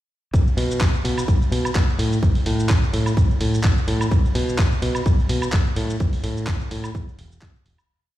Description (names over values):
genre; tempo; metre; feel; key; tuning
filtered disco house; 127 BPM; 4/4; swing 54% on 16ths; unclear; A4 = 441 Hz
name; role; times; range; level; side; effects
modern bright fingered electric bass; bass; 0.3-7.8 s; E1 to B2; -23 LUFS; equal; sidechain pumping
dusty soul sampler-style drum kit; drums; 0.3-7.9 s; handclaps, hi-hat, ride cymbal, shaker, woodblock; -28 LUFS; equal; sidechain pumping on cymbals, sidechain pumping on perc, sidechain pumping on hats
electronic kick drum; drums; 0.3-7.5 s; none; -18 LUFS; equal; none
room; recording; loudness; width
little or no reverb; played on a big sound system in a bare room, large studio reverb; -18 LUFS; side -14 dB against mid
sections
0.3-7.9 drop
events
drop 0.3-7.9; fade-out 5.4-7.9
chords
none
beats
| 0.34 0.81 1.28 1.75 | 2.22 2.70 3.17 3.64 | 4.11 4.59 5.06 5.53 | 6.00 6.48 6.95 7.42